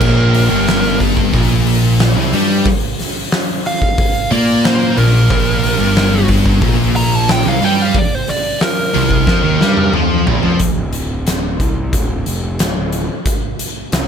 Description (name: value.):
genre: stoner and doom metal.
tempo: 91 BPM.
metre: 4/4.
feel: straight.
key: unclear.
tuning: A4 = 440 Hz.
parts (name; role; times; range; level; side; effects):
fuzz lead guitar; melody; 0.0-9.9 s; Bb4 to Bb5; -19 LUFS; right 2 dB; distortion, digital delay.
scooped high-gain guitar; riff; 0.0-10.6 s; G2 to Bb3; -20 LUFS; left 1 dB; distortion.
thick fuzz guitar; riff; 0.0-10.6 s; G2 to Bb3; -18 LUFS; left 9 dB; distortion.
thick fuzz guitar; riff; 0.0-10.6 s; G2 to Bb3; -17 LUFS; right 8 dB; distortion.
fuzz picked electric bass; bass; 0.0-14.1 s; D1 to Bb2; -20 LUFS; equal; overdrive.
oversized low-tuned drum kit; drums; 0.0-14.1 s; crash cymbal, hi-hat, kick drum, snare drum, toms; -17 LUFS; equal; none.
room: small room ambience.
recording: none.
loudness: -12 LUFS.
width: side -7 dB against mid.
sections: 0.0-10.6 A section; 10.6-14.1 B section.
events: lead electric guitar solo 0.0-10.6; drum fill 9.3-10.6.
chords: 0.0 Bb5; 10.6 N.C..